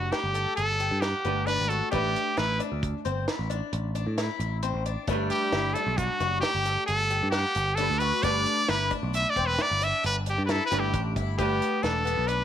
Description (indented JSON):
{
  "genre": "progressive instrumental, band music in an uneven meter",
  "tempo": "133 BPM",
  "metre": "7/4",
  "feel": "straight",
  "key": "G major",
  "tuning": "A4 = 438 Hz",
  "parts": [
    { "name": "brilliant trumpet", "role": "melody", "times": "0.0-12.4 s", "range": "F#4 to E5", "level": "-26 LUFS", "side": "right 1 dB", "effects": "none" },
    { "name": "archtop guitar, miked and amplified", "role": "accompaniment", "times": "0.0-12.4 s", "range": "G3 to B4", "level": "-34 LUFS", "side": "right 1 dB", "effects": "double-tracked left and right" },
    { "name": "picked twelve-string acoustic guitar", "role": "arpeggios", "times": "0.0-12.4 s", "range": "B3 to F#5", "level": "-34 LUFS", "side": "left 9 dB", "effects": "none" },
    { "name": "picked electric bass", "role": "bass", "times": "0.0-12.4 s", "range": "E1 to A2", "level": "-30 LUFS", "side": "right 1 dB", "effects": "none" },
    { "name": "deep reggae drum kit", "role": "drums", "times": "0.1-12.4 s", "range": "hi-hat, kick drum, snare drum", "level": "-33 LUFS", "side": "right 1 dB", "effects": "none" },
    { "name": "tube shaker", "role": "percussion", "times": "5.1-11.3 s", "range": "none", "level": "-49 LUFS", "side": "right 19 dB", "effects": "none" }
  ],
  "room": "light reverb, small room ambience",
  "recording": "1960s-style stereo with parts hard left and right",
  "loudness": "-24 LUFS",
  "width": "side -10 dB against mid",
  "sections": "0.0-11.4 A section; 11.4-12.4 B section",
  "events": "trumpet solo 0.0-11.4",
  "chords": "0.0 Gmaj9; 1.9 Am11; 5.1 Gmaj9; 8.2 G6; 11.4 Gadd9"
}